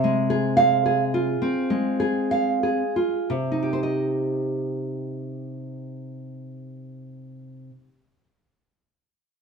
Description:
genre	romantic piece for solo classical guitar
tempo	58-77 BPM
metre	4/4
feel	rubato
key	C minor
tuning	A4 = 440 Hz
part	nylon-string guitar	solo	0.0-8.2 s	C3 to F5	-22 LUFS	right 1 dB	none
room	wet studio reverb, RT60 0.8 s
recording	band playing live in one room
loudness	-21 LUFS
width	side -5 dB against mid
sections	0.0-3.3 A section; 3.3-7.0 B section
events	slowing down 0.0-3.3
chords	0.0 Fm/C; 3.3 Cm

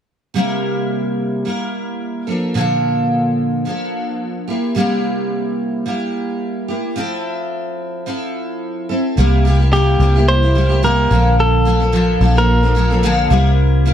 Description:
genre	pop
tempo	109 BPM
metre	4/4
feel	swing 55% on 16ths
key	C mixolydian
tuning	A4 = 445 Hz
part	picked steel-string acoustic guitar	accompaniment	0.3-13.9 s	Bb2 to Bb4	-18 LUFS	equal	double-tracked left and right
part	vintage muted fingered electric bass	bass	9.2-13.9 s	Bb1 to C2	-14 LUFS	equal	none
part	direct-recorded clean electric guitar	melody	9.7-13.2 s	G4 to C5	-18 LUFS	equal	ping-pong delay
room	moderate studio reverb, RT60 0.5 s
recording	dark, warm production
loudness	-14 LUFS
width	side -9 dB against mid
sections	0.4-9.2 A section; 9.2-13.9 B section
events	none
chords	0.4 C7; 2.3 Bbmaj7; 4.5 C7; 7.0 Fmaj7; 9.2 C7; 11.1 Bbmaj7; 13.3 C7

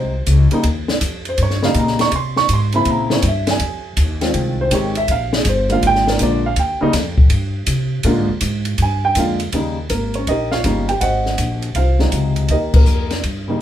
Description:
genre	jazz piano trio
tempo	162 BPM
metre	4/4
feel	swing 66% on 8ths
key	Eb mixolydian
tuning	A4 = 440 Hz
part	dark baby grand piano	melody	0.0-13.6 s	C3 to Db6	-18 LUFS	right 1 dB	none
part	upright bass	bass	0.0-13.6 s	G1 to C3	-19 LUFS	equal	none
part	open jazz drum kit	drums	0.3-13.4 s	crash cymbal, hi-hat, kick drum, ride cymbal, snare drum	-20 LUFS	left 1 dB	none
room	wet small room ambience, RT60 0.5 s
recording	band playing live in one room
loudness	-15 LUFS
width	side -11 dB against mid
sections	0.0-9.5 A section; 9.5-13.6 B section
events	grand piano solo 0.0-9.5; band accent 12.7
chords	0.0 Ab (rootless); 0.6 Eb7; 2.1 C7b9; 3.6 Fm7; 5.1 Bb7; 6.6 Eb; 8.0 Bb7; 9.5 Eb7; 11.0 Ab7; 12.5 Eb

